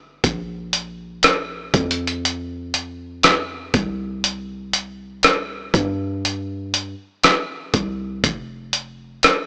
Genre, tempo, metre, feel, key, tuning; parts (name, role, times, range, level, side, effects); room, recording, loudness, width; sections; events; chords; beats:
contemporary R&B; 60 BPM; 4/4; straight; A4 = 440 Hz
warm 808-style bass; bass; 0.0-9.2 s; F1 to G2; -29 LUFS; equal
dusty soul sampler-style drum kit; drums; 0.2-9.5 s; hi-hat, kick drum, rim click; -18 LUFS; equal
light reverb; dry, gritty hardware recording, small speaker sound; -21 LUFS; mono
0.0-9.5 A section
| 0.24 1.24 2.24 3.24 | 4.24 5.24 6.24 7.24 | 8.24 9.24